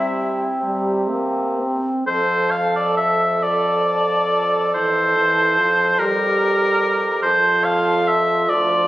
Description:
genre	classical, slow romantic movement for wind quintet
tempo	41-49 BPM (dotted quarters)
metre	6/8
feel	rubato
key	F major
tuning	A4 = 440 Hz
part	mellow hollow silver concert flute	melody	0.0-8.9 s	E5 to Bb5	-28 LUFS	left 1 dB	none
part	warm oboe	second line	0.0-8.9 s	E4 to F5	-18 LUFS	equal	none
part	warm French horn	accompaniment	0.0-8.9 s	E3 to C4	-26 LUFS	equal	none
part	warm clarinet	accompaniment	0.0-8.9 s	C4 to A4	-25 LUFS	right 3 dB	none
part	mellow bassoon	bass	0.0-8.9 s	D2 to C3	-25 LUFS	right 1 dB	none
room	moderate recital hall reverb, RT60 1.3 s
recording	recorded on a phone in the room, club reverb, compression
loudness	-16 LUFS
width	side -16 dB against mid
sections	0.0-2.1 A section; 2.1-8.9 B section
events	none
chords	0.0 C; 2.1 F; 4.7 C7/F; 7.2 F

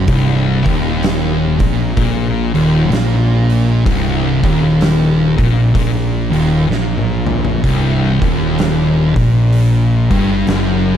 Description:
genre	stoner and doom metal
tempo	64 BPM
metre	4/4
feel	swing 61% on 8ths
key	C minor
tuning	A4 = 439 Hz
part	thick fuzz guitar	riff	0.0-11.0 s	C2 to Bb2	-16 LUFS	left 7 dB	distortion
part	thick fuzz guitar	riff	0.0-11.0 s	C2 to Bb2	-16 LUFS	right 6 dB	distortion
part	fuzz fingered electric bass	bass	0.0-11.0 s	C1 to Bb1	-20 LUFS	equal	overdrive
part	oversized low-tuned drum kit	drums	0.1-10.8 s	hi-hat, kick drum, snare drum, toms	-20 LUFS	equal	none
room	light reverb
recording	none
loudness	-12 LUFS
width	side -9 dB against mid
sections	0.0-11.0 A section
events	drum fill 6.7-7.6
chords	0.0 Cm

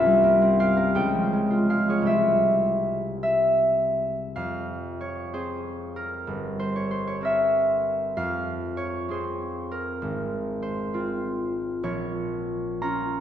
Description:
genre	classical, solo harp piece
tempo	51-68 BPM (dotted quarters)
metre	6/8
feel	rubato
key	F minor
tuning	A4 = 440 Hz
part	concert harp	solo	0.0-13.2 s	G1 to Bb5	-22 LUFS	equal	none
room	wet church reverb, RT60 2.9 s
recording	heard from further back in the room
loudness	-23 LUFS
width	side -10 dB against mid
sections	0.0-4.4 A section; 4.4-13.2 B section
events	none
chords	0.0 C7; 0.9 Db; 2.1 C; 4.4 Fm; 6.3 C7/G; 8.2 Fm; 10.0 Fm/Ab; 11.8 Bbm

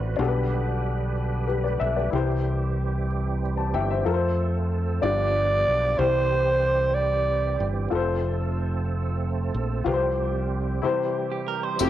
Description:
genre	slow gospel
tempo	62 BPM (dotted quarters)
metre	6/8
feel	straight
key	unclear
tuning	A4 = 439 Hz
part	warm baby grand piano	accompaniment	0.0-11.9 s	G2 to A5	-28 LUFS	left 6 dB	cassette tape
part	bright tonewheel organ	sustained chords	0.0-11.9 s	D3 to B4	-32 LUFS	right 7 dB	fast rotary speaker, chorus vibrato, cassette tape
part	fingered electric bass	bass	0.0-11.9 s	F1 to F2	-26 LUFS	equal	none
part	breathy alto saxophone	melody	5.0-7.7 s	C5 to D5	-23 LUFS	right 2 dB	cassette tape, analog delay
part	clean electric guitar	second line	11.3-11.9 s	G4 to C5	-29 LUFS	right 7 dB	cassette tape
part	warm studio string section	melody	11.8-11.9 s	C4 to G4	-24 LUFS	right 1 dB	cassette tape
part	tambourine	percussion	11.8-11.9 s	none	-30 LUFS	left 9 dB	none
room	light reverb, small room ambience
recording	home recording on cassette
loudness	-22 LUFS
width	side -12 dB against mid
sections	0.0-11.8 A section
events	none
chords	0.2 G/B; 2.1 C; 4.1 F; 5.0 G7; 6.0 C; 7.9 F; 9.9 Csus4; 10.8 C

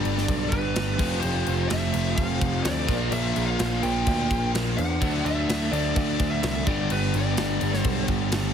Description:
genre	hard rock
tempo	127 BPM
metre	4/4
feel	straight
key	unclear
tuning	A4 = 445 Hz
part	smooth overdriven lead guitar	melody	0.0-8.1 s	B4 to G5	-31 LUFS	left 1 dB	none
part	overdriven tonewheel organ	sustained chords	0.0-8.5 s	F3 to E5	-38 LUFS	equal	slow rotary speaker, chorus vibrato
part	cranked stack guitar	riff	0.0-8.5 s	F2 to D4	-31 LUFS	left 10 dB	overdrive, spring reverb
part	crunchy overdriven guitar	riff	0.0-8.5 s	F2 to D4	-30 LUFS	right 10 dB	none
part	overdriven electric guitar	riff	0.0-8.5 s	F2 to D4	-31 LUFS	right 1 dB	none
part	picked electric bass	bass	0.0-8.5 s	F1 to E2	-28 LUFS	equal	none
part	tight metal drum kit	drums	0.1-8.4 s	crash cymbal, kick drum, snare drum	-29 LUFS	left 1 dB	none
room	small room ambience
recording	heavily compressed radio sound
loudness	-22 LUFS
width	side -8 dB against mid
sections	0.0-8.5 A section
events	none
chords	0.0 G; 1.0 F; 2.9 Bb; 5.0 D; 6.7 G

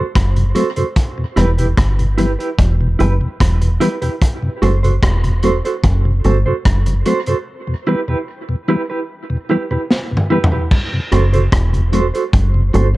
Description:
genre	dub reggae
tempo	74 BPM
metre	4/4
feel	straight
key	unclear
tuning	A4 = 439 Hz
part	mellow electric guitar	accompaniment	0.0-12.9 s	E4 to C5	-20 LUFS	right 4 dB	tremolo, tape echo
part	mellow tonewheel organ	accompaniment	0.0-13.0 s	E2 to C4	-19 LUFS	left 1 dB	slow rotary speaker
part	deep dub fingered electric bass	bass	0.2-12.9 s	E1 to G1	-14 LUFS	equal	none
part	crunchy breakbeat drum kit	drums	0.2-12.9 s	crash cymbal, hi-hat, kick drum, rim click, snare drum, toms	-17 LUFS	equal	none
room	small room ambience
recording	dark, warm production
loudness	-14 LUFS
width	side -18 dB against mid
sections	0.0-10.7 A section; 10.7-13.0 A section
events	break 7.5-10.7; drum fill 9.9-10.7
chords	0.0 F#dim; 1.0 Em; 4.2 F#dim; 7.5 Em; 10.7 F#dim

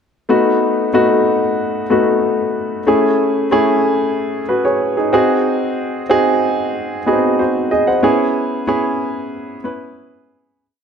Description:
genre	pop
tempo	93 BPM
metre	4/4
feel	straight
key	C# minor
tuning	A4 = 440 Hz
part	clear grand piano	solo	0.3-10.6 s	A3 to F#5	-14 LUFS	equal	none
room	wet lush hall reverb, RT60 2.2 s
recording	dark, warm production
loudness	-13 LUFS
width	side -7 dB against mid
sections	0.3-10.6 verse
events	fade-out 8.0-10.6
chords	0.3 B7; 2.9 Amaj7; 5.1 G#7; 8.0 C#m7

